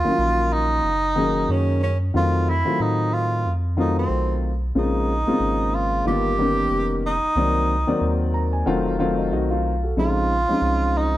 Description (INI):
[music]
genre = hip hop, jazz-hop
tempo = 92 BPM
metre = 4/4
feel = swing 58% on 16ths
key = Bb minor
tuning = A4 = 440 Hz
[part]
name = breathy tenor saxophone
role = melody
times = 0.0-11.2 s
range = C4 to G4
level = -23 LUFS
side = right 2 dB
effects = none
[part]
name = dark grand piano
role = accompaniment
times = 0.0-11.2 s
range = C3 to Bb5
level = -23 LUFS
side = left 2 dB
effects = none
[part]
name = round analog bass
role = bass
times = 0.0-11.2 s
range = F1 to A2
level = -24 LUFS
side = equal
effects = none
[sound]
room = light reverb, small room ambience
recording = dark, warm production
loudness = -19 LUFS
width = side -15 dB against mid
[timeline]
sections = 0.0-11.2 A section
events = grand piano fill 8.0-10.0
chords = 0.0 Ebm7; 2.1 F7b9; 4.8 Bbm9; 6.1 G7alt; 7.4 Cm7b5; 8.7 F7b9; 10.0 Bbm11